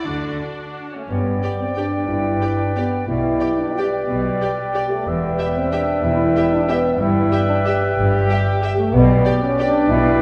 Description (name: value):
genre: classical, orchestral ballroom waltz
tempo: 161-202 BPM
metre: 3/4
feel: rubato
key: G major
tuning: A4 = 442 Hz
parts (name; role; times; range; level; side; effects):
- rich symphonic violin section; melody; 0.0-9.7 s; D5 to G5; -41 LUFS; equal; none
- rich symphonic violin section; second line; 0.0-9.7 s; F#4 to E5; -36 LUFS; equal; none
- rich symphonic viola section; accompaniment; 0.0-9.7 s; C#4 to G4; -34 LUFS; equal; none
- dark symphonic double bass section; bass; 0.1-10.2 s; E1 to D2; -27 LUFS; equal; none
- rich symphonic cello section; bass; 0.1-10.2 s; E2 to D3; -26 LUFS; equal; none
- mellow French horn section; sustained chords; 0.9-10.2 s; A3 to G4; -23 LUFS; equal; none
- silver concert flute; second line; 1.1-10.2 s; G5; -32 LUFS; equal; none
- warm clarinet; second line; 1.1-10.2 s; B4; -31 LUFS; equal; none
- warm oboe; second line; 1.1-10.2 s; D5 to E5; -30 LUFS; equal; none
- mellow bassoon; accompaniment; 1.1-10.2 s; G3; -29 LUFS; equal; none
room: wet concert hall reverb, RT60 1.8 s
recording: heard from further back in the room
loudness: -19 LUFS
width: mono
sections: 0.0-1.1 A section; 1.1-10.2 B section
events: none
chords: 0.0 D; 1.1 G; 3.1 G/B; 5.1 Em; 7.0 Em/G; 8.9 G/B